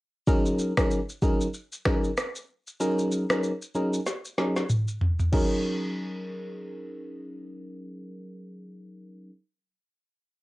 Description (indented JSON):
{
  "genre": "afrobeats",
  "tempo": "95 BPM",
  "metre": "4/4",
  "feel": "swing 58% on 16ths",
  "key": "F# major",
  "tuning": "A4 = 440 Hz",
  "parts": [
    { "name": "FM electric piano", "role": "accompaniment", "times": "0.3-9.3 s", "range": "F#3 to A#4", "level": "-28 LUFS", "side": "equal", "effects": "chorus, low-pass filter, cassette tape" },
    { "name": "afro-pop drum kit", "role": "drums", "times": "0.3-5.5 s", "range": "crash cymbal, finger snaps, kick drum, rim click, shaker, snare drum, toms", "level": "-26 LUFS", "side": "equal", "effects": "overdrive, cassette tape" }
  ],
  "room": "light reverb",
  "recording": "home recording on cassette",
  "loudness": "-24 LUFS",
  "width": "side -19 dB against mid",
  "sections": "0.3-5.3 A section; 5.3-7.9 B section",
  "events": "break 0.0; filter sweep on FM electric piano 0.3-5.3; drum fill 4.1-5.3",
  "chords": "0.3 F#6"
}